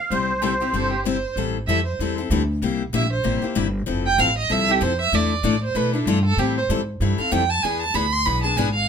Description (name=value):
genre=acoustic string swing (jazz manouche)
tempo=192 BPM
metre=4/4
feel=swing 59% on 8ths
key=A minor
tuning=A4 = 439 Hz
part: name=musette accordion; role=melody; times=0.0-1.0 s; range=C5 to F5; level=-23 LUFS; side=right 1 dB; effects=none
part: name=picked steel-string acoustic guitar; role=accompaniment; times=0.1-8.7 s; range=C3 to A4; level=-24 LUFS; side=left 7 dB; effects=none
part: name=upright bass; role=bass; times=0.1-8.9 s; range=F1 to B2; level=-24 LUFS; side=equal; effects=none
part: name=warm violin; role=second line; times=0.4-8.9 s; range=D4 to C6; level=-22 LUFS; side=right 5 dB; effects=none
room=light reverb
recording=minimal, uncompressed stereo recording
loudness=-19 LUFS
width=side -7 dB against mid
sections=0.0-1.4 A section; 1.4-8.9 B section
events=violin solo 1.4-8.9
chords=0.1 C; 1.4 Am7; 2.6 C7; 3.9 Fmaj7; 5.1 E7sus4; 6.4 Am7; 7.6 E7